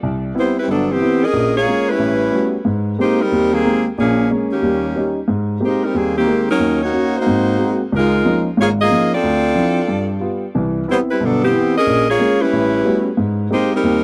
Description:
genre	jazz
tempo	182 BPM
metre	4/4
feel	swing 62% on 8ths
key	Ab major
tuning	A4 = 439 Hz
part	warm baby grand piano	accompaniment	0.0-14.0 s	G1 to G4	-21 LUFS	equal	none
part	clear saxophone section	melody	0.4-14.0 s	Eb3 to Eb5	-19 LUFS	equal	none
room	moderate booth ambience, RT60 0.3 s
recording	dry, close 1970s-style studio recording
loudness	-17 LUFS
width	mono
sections	0.0-5.3 A section; 5.3-14.0 A section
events	none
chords	0.0 Cmaj7; 1.3 Bbm7; 2.0 A13; 2.6 Abmaj9; 4.0 Bbm7; 4.6 Eb7; 5.3 Abmaj9; 6.6 Ebm7; 7.3 Ab9; 7.9 Db69; 9.2 Dm9; 9.9 G7; 10.5 Cmaj7; 11.9 Bbm7; 12.5 A13; 13.2 Abmaj9

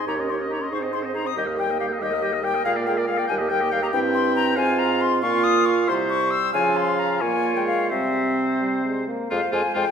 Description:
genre	quick classical-period movement for wind quintet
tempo	92 BPM (dotted quarters)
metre	6/8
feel	rubato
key	F minor from 3.9 s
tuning	A4 = 441 Hz
part	concert flute	melody	0.0-9.9 s	Eb5 to E6	-24 LUFS	left 6 dB	none
part	bright oboe	second line	0.0-9.8 s	F4 to G5	-28 LUFS	left 2 dB	none
part	bright clarinet	accompaniment	0.0-9.9 s	C4 to C5	-27 LUFS	right 6 dB	none
part	mellow French horn	accompaniment	0.0-9.9 s	F3 to Eb4	-30 LUFS	equal	none
part	mellow bassoon	bass	0.1-9.9 s	Eb2 to Db3	-26 LUFS	right 3 dB	none
room	wet recital hall reverb, RT60 1.7 s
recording	recorded in a church or concert hall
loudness	-20 LUFS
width	side -7 dB against mid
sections	0.0-9.3 A section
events	none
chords	0.1 Eb7; 0.7 Ab; 1.4 Eb; 2.7 Bb7; 3.3 Eb; 3.9 C/G; 4.6 Fm/Ab; 5.2 Bb5; 5.9 C; 6.5 Db; 7.2 Bbm; 7.9 C; 9.3 Fm

